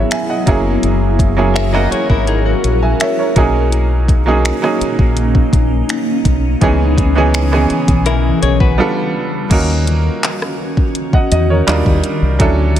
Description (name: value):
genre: contemporary R&B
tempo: 83 BPM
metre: 4/4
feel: straight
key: unclear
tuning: A4 = 440 Hz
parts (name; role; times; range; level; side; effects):
- bright baby grand piano; accompaniment; 0.0-12.8 s; E3 to G#5; -17 LUFS; right 4 dB; none
- granular cloud pad; sustained chords; 0.0-12.8 s; C#3 to A#4; -19 LUFS; left 1 dB; built-in reverb
- deep dub fingered electric bass; bass; 0.0-12.8 s; F#1 to E2; -15 LUFS; equal; none
- smooth R&B drum kit; drums; 0.1-12.8 s; crash cymbal, finger snaps, handclaps, hi-hat, kick drum, rim click; -16 LUFS; equal; vintage 12-bit sampler grit
- direct-recorded clean electric guitar; arpeggios; 1.6-3.3, 8.1-9.0 s; C#4 to E5; -20 LUFS; left 8 dB; spring reverb, digital delay
room: little or no reverb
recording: none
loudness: -12 LUFS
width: side -11 dB against mid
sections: 0.0-9.5 A section; 9.5-12.8 B section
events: break 8.8-9.5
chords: 0.5 F#9; 3.4 Bmaj13; 6.6 C#m7; 8.8 G9; 9.5 D#m7; 11.7 D#maj9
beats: 0.11 | 0.83 1.56 2.28 3.00 | 3.72 4.45 5.17 5.89 | 6.62 7.34 8.06 8.78 | 9.51 10.23 10.95 11.68 | 12.40